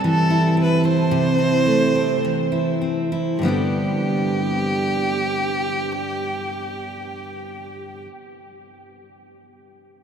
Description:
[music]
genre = pop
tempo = 98-114 BPM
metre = 4/4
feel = straight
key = G major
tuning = A4 = 440 Hz
[part]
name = picked steel-string acoustic guitar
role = accompaniment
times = 0.0-8.1 s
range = G2 to G4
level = -20 LUFS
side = right 1 dB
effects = none
[part]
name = clear violin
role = melody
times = 0.1-8.0 s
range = G4 to C5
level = -24 LUFS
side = right 1 dB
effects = none
[sound]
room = wet huge ambient reverb, RT60 8.5 s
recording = in a vast, echoing space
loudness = -18 LUFS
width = side -8 dB against mid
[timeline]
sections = 0.0-3.4 A section; 3.4-8.3 B section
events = slowing down 0.0-3.4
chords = 0.0 C; 1.1 Am/C; 3.4 G

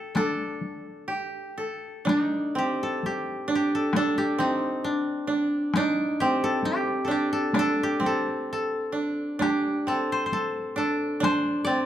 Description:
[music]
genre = japanese traditional, Japanese chamber music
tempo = 61-69 BPM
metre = 2/4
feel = rubato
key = D in sen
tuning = A4 = 440 Hz
[part]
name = koto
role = melody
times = 0.0-11.9 s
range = D4 to D5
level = -28 LUFS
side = left 2 dB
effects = none
[part]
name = koto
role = second line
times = 0.0-11.9 s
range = C4 to A4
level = -26 LUFS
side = right 2 dB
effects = none
[part]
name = taiko ensemble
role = percussion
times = 0.2-11.4 s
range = none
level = -31 LUFS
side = left 2 dB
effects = none
[sound]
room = wet recital hall reverb, RT60 1.6 s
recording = dark, warm production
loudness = -24 LUFS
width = side -11 dB against mid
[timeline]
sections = 0.0-2.1 A section; 2.1-11.9 B section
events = none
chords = none

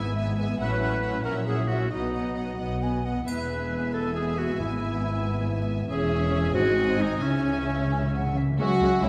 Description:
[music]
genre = classical, dramatic, fast romantic movement for symphony orchestra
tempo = 90 BPM (dotted quarters)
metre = 6/8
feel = uneven beats, rubato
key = E major, C# minor from 5.9 s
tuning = A4 = 440 Hz
[part]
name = rich symphonic violin section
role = melody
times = 0.0-8.4 s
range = F#5 to G#5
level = -44 LUFS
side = equal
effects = none
[part]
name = bright oboe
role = second line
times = 0.0-9.1 s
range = C#4 to E5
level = -36 LUFS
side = equal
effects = none
[part]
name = dark clarinet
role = second line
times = 0.0-9.1 s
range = C#4 to B4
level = -34 LUFS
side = equal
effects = none
[part]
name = warm symphonic violin section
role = second line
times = 0.0-9.1 s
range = E4 to E5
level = -36 LUFS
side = equal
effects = none
[part]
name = warm symphonic viola section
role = accompaniment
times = 0.0-9.1 s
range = G#3 to C#4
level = -36 LUFS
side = equal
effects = none
[part]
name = dark symphonic cello section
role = bass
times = 0.0-9.1 s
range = C#2 to C#3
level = -34 LUFS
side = equal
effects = none
[part]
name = rich symphonic double bass section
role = bass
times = 0.0-9.1 s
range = E1 to C#2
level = -33 LUFS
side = equal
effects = none
[part]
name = mellow French horn section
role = sustained chords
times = 0.4-9.1 s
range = E3 to F#4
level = -36 LUFS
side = equal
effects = none
[part]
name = silver concert flute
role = second line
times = 2.6-3.3, 7.9-9.1 s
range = E5 to G#5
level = -38 LUFS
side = equal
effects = none
[part]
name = triangle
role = percussion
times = 3.3-4.1 s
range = none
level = -48 LUFS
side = equal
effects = none
[part]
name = timpani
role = percussion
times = 4.6-5.2, 7.2-8.6 s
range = G#2 to C#3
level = -34 LUFS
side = equal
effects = none
[sound]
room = wet scoring stage reverb, RT60 1.5 s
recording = vinyl crackle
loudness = -26 LUFS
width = mono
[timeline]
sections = 0.0-8.6 A section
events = timpani fill 7.2-8.6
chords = 0.0 E/G#; 0.6 F#m7/A; 1.2 F#7/A#; 1.9 B; 3.3 E; 4.6 E/G#; 5.9 C#m/E; 6.5 G#7; 7.2 C#m

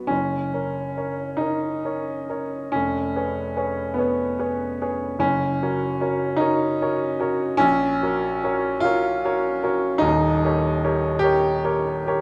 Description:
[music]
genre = classical, romantic nocturne for solo piano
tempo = 43-52 BPM (dotted quarters)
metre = 6/8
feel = rubato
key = F# major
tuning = A4 = 440 Hz
[part]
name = warm upright piano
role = solo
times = 0.0-12.2 s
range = D#1 to C#5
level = -23 LUFS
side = equal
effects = none
[sound]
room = moderate recital hall reverb, RT60 1.6 s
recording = none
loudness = -23 LUFS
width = mono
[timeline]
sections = 0.1-12.2 A section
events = none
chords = 0.1 F#; 2.7 C#7/E#; 5.2 F#; 7.6 F#/A#; 10.1 D#7

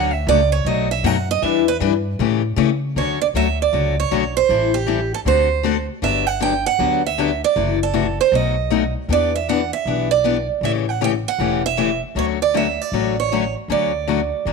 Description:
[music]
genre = acoustic string swing (jazz manouche)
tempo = 156 BPM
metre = 4/4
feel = swing 63% on 8ths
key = D major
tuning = A4 = 441 Hz
[part]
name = picked steel-string acoustic guitar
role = melody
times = 0.0-14.5 s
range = G4 to G5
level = -20 LUFS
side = right 11 dB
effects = none
[part]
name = picked steel-string acoustic guitar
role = accompaniment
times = 0.0-14.5 s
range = B2 to B4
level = -21 LUFS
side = left 14 dB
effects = none
[part]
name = upright bass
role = bass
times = 0.0-14.5 s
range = E1 to C#3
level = -24 LUFS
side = left 1 dB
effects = none
[sound]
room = light reverb, studio reverb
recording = 1960s-style stereo with parts hard left and right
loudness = -16 LUFS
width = side -4 dB against mid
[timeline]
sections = 0.0-3.0 A section; 3.0-14.5 B section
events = steel-string acoustic guitar solo 0.0-3.0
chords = 0.0 Dmaj7; 0.7 B7; 1.4 Em7; 2.2 A7; 3.0 Dmaj7; 4.5 Am7; 5.3 D7; 6.0 Gmaj7; 7.6 F#m7b5; 8.3 B7; 9.1 Em7; 10.6 A7; 12.2 Dmaj7

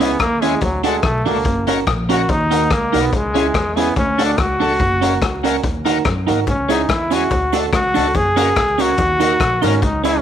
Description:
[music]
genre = ska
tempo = 143 BPM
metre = 4/4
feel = swing 54% on 8ths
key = unclear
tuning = A4 = 440 Hz
[part]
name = brilliant trombone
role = melody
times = 0.0-10.2 s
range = F#3 to G#4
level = -19 LUFS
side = equal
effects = none
[part]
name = clean electric guitar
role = accompaniment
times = 0.0-10.2 s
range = C#4 to A#4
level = -21 LUFS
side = right 9 dB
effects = none
[part]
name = bright tonewheel organ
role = stabs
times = 0.0-10.2 s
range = G#3 to A#4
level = -24 LUFS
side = left 10 dB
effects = overdrive, slow rotary speaker
[part]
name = upright bass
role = bass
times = 0.0-10.2 s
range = F#1 to F#2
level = -23 LUFS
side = equal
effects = none
[part]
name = raw garage drum kit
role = drums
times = 0.0-10.1 s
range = hi-hat, kick drum, rim click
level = -21 LUFS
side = left 2 dB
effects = none
[part]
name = cabasa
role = percussion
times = 6.5-10.1 s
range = none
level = -42 LUFS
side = right 13 dB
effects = none
[sound]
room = light reverb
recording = 1960s-style stereo with parts hard left and right, vinyl crackle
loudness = -14 LUFS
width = side -9 dB against mid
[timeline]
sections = 0.0-10.2 A section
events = trombone solo 0.0-10.2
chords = 0.0 C#m; 0.6 D; 1.5 F#; 2.3 D#m; 3.1 C#m; 4.0 D; 4.8 F#; 5.6 D#m; 6.5 C#m; 7.3 D; 8.1 F#; 9.0 D#m

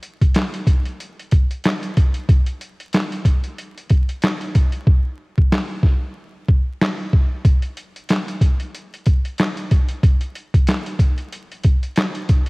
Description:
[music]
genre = hip hop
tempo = 93 BPM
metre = 4/4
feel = swing 57% on 16ths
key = none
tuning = none
[part]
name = boom bap sampler-style drum kit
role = drums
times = 0.0-12.5 s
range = handclaps, hi-hat, kick drum, snare drum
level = -16 LUFS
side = equal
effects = cassette tape
[sound]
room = light reverb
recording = home recording on cassette, vinyl crackle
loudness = -17 LUFS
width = side -29 dB against mid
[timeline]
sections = 0.0-12.5 A section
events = hi-hats muted 4.9-7.5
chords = none

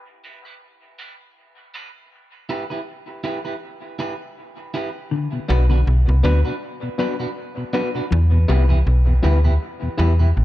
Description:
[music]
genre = reggae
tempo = 80 BPM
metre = 4/4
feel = swing 56% on 16ths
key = B phrygian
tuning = A4 = 441 Hz
[part]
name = electric guitar at the edge of break-up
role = accompaniment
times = 0.2-10.3 s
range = D4 to B4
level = -28 LUFS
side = right 3 dB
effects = high-pass filter, low-pass filter, dub echo
[part]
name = mellow electric guitar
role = arpeggios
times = 5.1-8.3 s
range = B2 to E3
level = -29 LUFS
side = left 4 dB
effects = spring reverb, dub echo
[part]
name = mellow tonewheel organ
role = accompaniment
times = 5.3-10.3 s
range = E2 to E4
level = -28 LUFS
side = left 2 dB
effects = overdrive, chorus vibrato, slow rotary speaker
[part]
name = overdriven reed electric piano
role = stabs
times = 5.5-10.1 s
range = B3 to B4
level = -27 LUFS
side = left 5 dB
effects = fast tremolo, high-pass filter, low-pass filter, dub echo
[part]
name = slap-like FM bass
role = bass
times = 5.5-10.4 s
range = A1 to E2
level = -14 LUFS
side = equal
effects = none
[sound]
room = light reverb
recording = echo-heavy mix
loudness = -17 LUFS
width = side -15 dB against mid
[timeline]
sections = 0.0-5.1 A section; 5.1-10.4 B section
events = break 0.0-5.1; filter sweep 0.0-5.1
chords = 0.0 Bm; 2.1 Em; 5.1 Bm; 8.1 Em

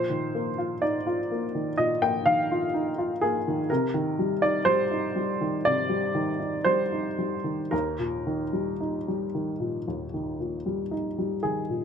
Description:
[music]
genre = neoclassical minimalist piano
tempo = 55-63 BPM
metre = 4/4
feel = rubato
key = unclear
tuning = A4 = 441 Hz
[part]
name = warm upright piano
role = solo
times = 0.0-11.8 s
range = Eb2 to G5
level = -24 LUFS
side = equal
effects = none
[sound]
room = light reverb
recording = close, detailed microphones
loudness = -24 LUFS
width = side -7 dB against mid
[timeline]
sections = 0.0-11.8 A section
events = none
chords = 0.0 Bbsus4; 3.7 Cm; 7.7 Eb

